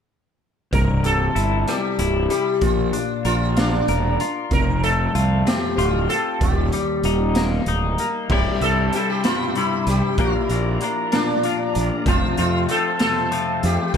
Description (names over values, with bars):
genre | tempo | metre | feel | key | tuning
psychedelic rock | 64 BPM (dotted quarters) | 6/8 | straight | C mixolydian | A4 = 440 Hz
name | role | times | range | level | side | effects
sitar | melody | 0.7-14.0 s | D4 to Bb4 | -23 LUFS | equal | analog delay
clean electric guitar | riff | 0.7-14.0 s | C2 to Bb4 | -24 LUFS | left 6 dB | flanger, analog delay
fuzz fingered electric bass | bass | 0.7-14.0 s | C1 to F2 | -22 LUFS | right 2 dB | overdrive
raw garage drum kit | drums | 0.7-14.0 s | crash cymbal, hi-hat, kick drum, rim click, snare drum | -25 LUFS | right 1 dB | analog delay
bright tonewheel organ | sustained chords | 8.3-14.0 s | C5 to C6 | -35 LUFS | right 5 dB | chorus vibrato, slow rotary speaker
room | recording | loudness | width
light reverb | echo-heavy mix | -18 LUFS | side -7 dB against mid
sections
0.7-8.3 A section; 8.3-14.0 B section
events
none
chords
0.7 C; 2.6 Bb; 4.5 F; 6.4 Eb; 8.3 C; 10.2 Bb; 12.1 F